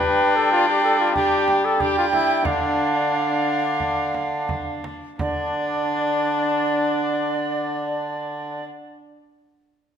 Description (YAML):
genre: classical, renaissance-style consort dance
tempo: 84-97 BPM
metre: 4/4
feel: straight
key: D minor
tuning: A4 = 441 Hz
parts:
  - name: mellow cornet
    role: melody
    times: 0.0-8.6 s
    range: D4 to B4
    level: -25 LUFS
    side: left 5 dB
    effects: none
  - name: alto recorder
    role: second line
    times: 0.0-8.6 s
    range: D5 to G5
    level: -25 LUFS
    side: right 6 dB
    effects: none
  - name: rich viola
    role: accompaniment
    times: 0.0-8.6 s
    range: D4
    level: -26 LUFS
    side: left 1 dB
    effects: none
  - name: mellow bassoon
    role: bass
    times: 0.0-8.6 s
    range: D3 to G3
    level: -25 LUFS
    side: right 2 dB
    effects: none
  - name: frame drum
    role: percussion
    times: 1.2-5.5 s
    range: none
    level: -33 LUFS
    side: right 3 dB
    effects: none
room: wet recital hall reverb, RT60 1.5 s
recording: none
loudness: -19 LUFS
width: side -8 dB against mid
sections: 0.0-5.2 A section; 5.2-8.0 B section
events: slowing down 0.0-5.2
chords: 0.0 G5; 2.5 Dm; 5.2 N.C.